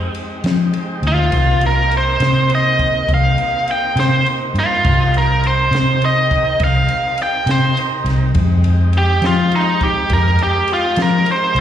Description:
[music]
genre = slow blues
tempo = 68 BPM (dotted quarters)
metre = 12/8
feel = straight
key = C minor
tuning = A4 = 443 Hz
[part]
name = tonewheel organ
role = sustained chords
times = 0.0-11.6 s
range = Ab3 to Bb4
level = -25 LUFS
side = equal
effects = slow rotary speaker
[part]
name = compact cocktail drum kit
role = drums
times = 0.1-11.6 s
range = kick drum, ride cymbal, snare drum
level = -24 LUFS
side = equal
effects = slapback echo
[part]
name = vintage muted fingered electric bass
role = bass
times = 0.4-11.6 s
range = C2 to F3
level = -16 LUFS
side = left 1 dB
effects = none
[part]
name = biting lead guitar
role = melody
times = 1.1-11.6 s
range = Eb4 to G5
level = -16 LUFS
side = right 1 dB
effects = overdrive, slapback echo, tape echo
[sound]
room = light reverb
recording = live gig heard through the venue's PA, recital hall reverb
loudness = -13 LUFS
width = side -10 dB against mid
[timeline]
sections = 0.0-11.6 A section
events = lead electric guitar solo 0.0-11.6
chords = 0.0 Fm9; 1.3 Cm7; 8.3 Fm9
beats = 0.44 | 1.32 2.20 3.08 3.96 | 4.83 5.71 6.59 7.47 | 8.34 9.22 10.10 10.97

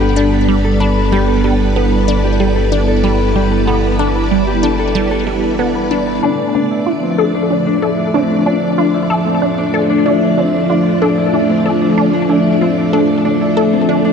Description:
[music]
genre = ambient, sequencer-driven space music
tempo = 94 BPM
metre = 4/4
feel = straight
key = D dorian from 6.2 s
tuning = A4 = 438 Hz
[part]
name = string machine, full ensemble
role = sustained chords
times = 0.0-14.1 s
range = F3 to D5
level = -15 LUFS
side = right 1 dB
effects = ensemble chorus
[part]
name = Celtic harp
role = arpeggios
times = 0.0-14.1 s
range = C4 to A5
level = -18 LUFS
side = left 5 dB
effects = auto-pan, low-pass filter, ping-pong delay
[part]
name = resonant blip pluck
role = riff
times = 0.0-14.1 s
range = G3 to A4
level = -18 LUFS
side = equal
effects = phaser, vintage 12-bit sampler grit, ping-pong delay
[part]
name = round analog bass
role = bass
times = 0.0-6.2 s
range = G1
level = -17 LUFS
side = equal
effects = none
[sound]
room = wet lush hall reverb, RT60 2.6 s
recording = dark, warm production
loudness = -12 LUFS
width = side -6 dB against mid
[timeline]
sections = 0.0-6.2 A section; 6.2-14.1 B section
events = filter sweep on synth arpeggio sound 6.2-14.1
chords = 0.0 G; 6.2 Dm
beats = 0.48 | 1.12 1.76 2.40 3.04 | 3.67 4.31 4.95 5.59 | 6.23 6.87 7.50 8.14 | 8.78 9.42 10.06 10.70 | 11.34 11.97 12.61 13.25 | 13.89

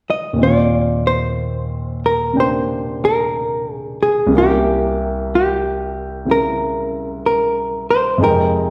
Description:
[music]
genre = jazz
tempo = 61 BPM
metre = 4/4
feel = swing 66% on 8ths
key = Eb major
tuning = A4 = 440 Hz
[part]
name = hollow-body jazz guitar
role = melody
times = 0.1-8.7 s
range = G4 to Eb5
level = -20 LUFS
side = equal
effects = none
[part]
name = warm baby grand piano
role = accompaniment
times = 0.3-8.7 s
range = C2 to G5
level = -21 LUFS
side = equal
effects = none
[sound]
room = wet recital hall reverb, RT60 1.4 s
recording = recorded in a church or concert hall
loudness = -18 LUFS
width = mono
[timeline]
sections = 0.4-8.7 A section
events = none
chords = 0.4 Eb6; 4.3 C7b9; 8.2 Fm9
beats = | 0.36 1.35 2.34 3.32 | 4.30 5.28 6.25 7.22 | 8.19

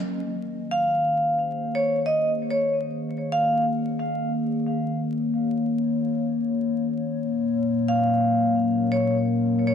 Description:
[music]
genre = future garage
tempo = 134 BPM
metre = 4/4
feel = swing 63% on 16ths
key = Bb minor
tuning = A4 = 440 Hz
[part]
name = warbly tape-like pad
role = sustained chords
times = 0.0-9.7 s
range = Bb2 to Eb5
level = -24 LUFS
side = left 2 dB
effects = chorus, built-in reverb
[part]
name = vibraphone with medium hard mallets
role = melody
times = 0.7-3.6, 7.9-9.7 s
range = Db5 to F5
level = -24 LUFS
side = equal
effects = analog delay
[sound]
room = moderate recital hall reverb, RT60 1.4 s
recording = dense, heavily limited modern master, vinyl crackle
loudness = -22 LUFS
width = side -8 dB against mid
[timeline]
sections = 0.0-9.7 A section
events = none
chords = 0.0 Bbm11; 7.2 Gb/Bb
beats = | 0.04 0.49 0.94 1.39 | 1.84 2.28 2.73 3.18 | 3.63 4.08 4.52 4.97 | 5.42 5.87 6.31 6.76 | 7.21 7.66 8.11 8.55 | 9.00 9.45

